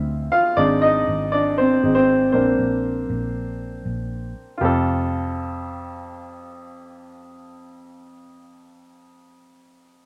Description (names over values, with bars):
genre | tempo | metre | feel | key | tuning
piano-driven pop | 119 BPM | 4/4 | straight | F major | A4 = 439 Hz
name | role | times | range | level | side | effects
warm upright piano | accompaniment | 0.0-10.1 s | F2 to F5 | -22 LUFS | equal | none
vintage muted fingered electric bass | bass | 0.0-8.2 s | F1 to D2 | -29 LUFS | equal | none
room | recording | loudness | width
moderate studio reverb, RT60 0.7 s | none | -21 LUFS | mono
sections
0.0-4.6 A section; 4.6-8.6 B section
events
upright piano solo 0.0-4.6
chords
0.0 Dm7; 0.6 Ab; 2.3 Bbadd9; 4.6 Fadd9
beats
0.07 | 0.57 1.08 1.58 2.09 | 2.59 3.10 3.60 4.11 | 4.61 5.11 5.62 6.12 | 6.63 7.13 7.63 8.14